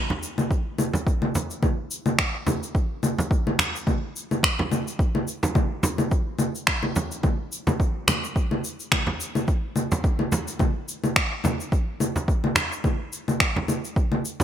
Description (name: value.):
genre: downtempo.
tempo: 107 BPM.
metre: 4/4.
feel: swing 56% on 16ths.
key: none.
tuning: none.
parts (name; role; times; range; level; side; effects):
frame drum; percussion; 0.1-14.4 s; none; -28 LUFS; right 2 dB; none.
electronic shaker, congas and finger snaps; drums; 0.2-14.4 s; none; -24 LUFS; left 1 dB; gated reverb.
electronic kick drum; drums; 0.5-14.1 s; none; -23 LUFS; equal; none.
room: light reverb.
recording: bright 1980s-style digital production.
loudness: -22 LUFS.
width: side -10 dB against mid.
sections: 0.0-14.4 A section.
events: none.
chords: none.